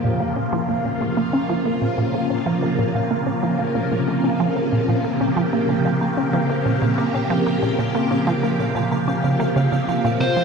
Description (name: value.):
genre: ambient, sequencer-driven space music.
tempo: 93 BPM.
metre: 4/4.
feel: straight.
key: Bb dorian.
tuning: A4 = 440 Hz.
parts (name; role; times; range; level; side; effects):
phased string machine; sustained chords; 0.0-10.4 s; C3 to G4; -20 LUFS; equal; ensemble chorus, phaser.
resonant blip pluck; riff; 0.0-10.4 s; Bb2 to Db4; -22 LUFS; right 1 dB; phaser, tape echo.
pulsing gated texture; texture; 0.4-10.4 s; F5; -34 LUFS; right 4 dB; chorus, built-in reverb.
high-gain lead guitar; melody; 10.2-10.4 s; C5; -19 LUFS; left 3 dB; distortion.
room: wet cathedral reverb, RT60 6.6 s.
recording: in a vast, echoing space.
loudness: -18 LUFS.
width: side -5 dB against mid.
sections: 0.0-10.4 A section.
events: fade-in on synth texture 0.0-10.4.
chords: 0.0 Bbmadd9.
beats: 0.53 1.17 1.82 | 2.46 3.11 3.75 4.40 | 5.04 5.69 6.33 6.98 | 7.62 8.27 8.91 9.56 | 10.20.